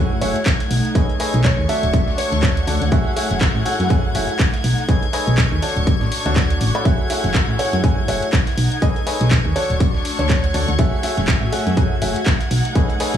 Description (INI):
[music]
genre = piano house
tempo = 122 BPM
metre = 4/4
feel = swing 58% on 16ths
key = F# minor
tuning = A4 = 438 Hz
[part]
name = warm symphonic violin section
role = sustained chords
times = 0.0-13.2 s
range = G#6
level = -30 LUFS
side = left 3 dB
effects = sidechain pumping
[part]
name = clear upright piano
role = riff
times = 0.0-13.2 s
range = F#4 to B5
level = -25 LUFS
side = equal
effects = sidechain pumping, digital delay
[part]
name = solid FM bass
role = bass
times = 0.0-13.2 s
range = D1 to F#2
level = -20 LUFS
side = equal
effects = sidechain pumping
[part]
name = dark studio string section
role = texture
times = 0.0-13.2 s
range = A3 to C#6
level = -27 LUFS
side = left 1 dB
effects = sidechain pumping
[part]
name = warm concert grand piano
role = melody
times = 0.2-2.9, 7.6-10.5 s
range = C#5 to E5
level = -27 LUFS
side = equal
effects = digital delay
[part]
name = dusty soul sampler-style drum kit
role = drums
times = 0.2-13.1 s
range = hi-hat, snare drum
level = -37 LUFS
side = right 2 dB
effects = none
[part]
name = punchy analog drum machine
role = drums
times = 0.2-13.2 s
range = handclaps, hi-hat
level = -26 LUFS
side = equal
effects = none
[part]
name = electronic kick drum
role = drums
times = 0.5-12.9 s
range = none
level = -18 LUFS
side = equal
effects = overdrive
[sound]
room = small room ambience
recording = studio ambience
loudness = -16 LUFS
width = side -10 dB against mid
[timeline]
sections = 0.0-13.2 A section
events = none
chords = 0.0 F#m9; 0.7 B13; 1.7 Dmaj7; 2.9 F#m9; 4.6 B13; 5.6 Dmaj7; 6.9 F#m9; 8.6 B13; 9.6 Dmaj7; 10.8 F#m9; 12.5 B13